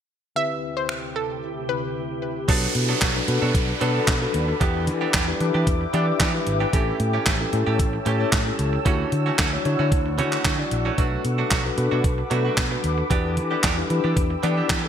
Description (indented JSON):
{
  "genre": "dance-pop",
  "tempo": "113 BPM",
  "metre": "4/4",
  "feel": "straight",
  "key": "unclear",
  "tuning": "A4 = 442 Hz",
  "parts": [
    { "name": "analog pluck", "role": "melody", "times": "0.4-2.1 s", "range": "A4 to E5", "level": "-28 LUFS", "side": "equal", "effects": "chorus, sidechain pumping, digital delay" },
    { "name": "mellow tine electric piano", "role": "accompaniment", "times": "0.4-14.9 s", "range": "D3 to D5", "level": "-27 LUFS", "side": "left 4 dB", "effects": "medium stereo tremolo, sidechain pumping" },
    { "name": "glassy FM pad", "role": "sustained chords", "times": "1.0-14.9 s", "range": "D2 to E6", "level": "-30 LUFS", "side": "left 1 dB", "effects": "ensemble chorus, built-in reverb, sidechain pumping" },
    { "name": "crisp 8-bit digital drum machine", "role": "drums", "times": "0.9-14.8 s", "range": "crash cymbal, finger snaps, handclaps, hi-hat, kick drum, snare drum", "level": "-23 LUFS", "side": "equal", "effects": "gated reverb" },
    { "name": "direct-recorded clean electric guitar", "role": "riff", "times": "2.5-14.9 s", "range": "E3 to A4", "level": "-29 LUFS", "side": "right 7 dB", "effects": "lush chorus" },
    { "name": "fingered electric bass", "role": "bass", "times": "2.5-14.9 s", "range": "G#1 to E3", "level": "-25 LUFS", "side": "equal", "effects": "sidechain pumping" },
    { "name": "downlifter", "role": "sound effects", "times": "2.5-6.7 s", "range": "none", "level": "-31 LUFS", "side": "right 3 dB", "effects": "none" }
  ],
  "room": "moderate lush hall reverb, RT60 1.9 s",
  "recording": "bright 1980s-style digital production",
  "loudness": "-20 LUFS",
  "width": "side -9 dB against mid",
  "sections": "0.4-2.5 A section; 2.5-14.9 B section",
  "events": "drums muted 2.0-2.5",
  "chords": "0.4 Cmaj7/D; 2.5 Bm7; 4.6 Em7; 6.7 A7; 8.9 Dmaj9; 11.0 Bm7; 13.1 Em7"
}